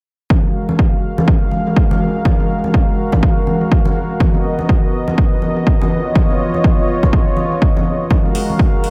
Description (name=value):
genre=deep house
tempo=123 BPM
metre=4/4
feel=swing 59% on 16ths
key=F# major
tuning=A4 = 440 Hz
part: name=warm analog pad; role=sustained chords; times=0.3-8.9 s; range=G#3 to E#5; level=-22 LUFS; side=equal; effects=chorus, sidechain pumping
part: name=electronic kick drum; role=drums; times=0.3-8.7 s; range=none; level=-16 LUFS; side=equal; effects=overdrive
part: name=congas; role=percussion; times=0.3-8.6 s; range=none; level=-23 LUFS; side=equal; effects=tape echo
part: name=electronic hi-hat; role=drums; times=8.3-8.9 s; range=none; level=-31 LUFS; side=equal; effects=overdrive
room=light reverb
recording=echo-heavy mix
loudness=-15 LUFS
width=mono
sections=0.3-8.9 A section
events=none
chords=0.3 F#maj9; 4.2 Bmaj7; 5.9 C#9; 8.1 F#maj9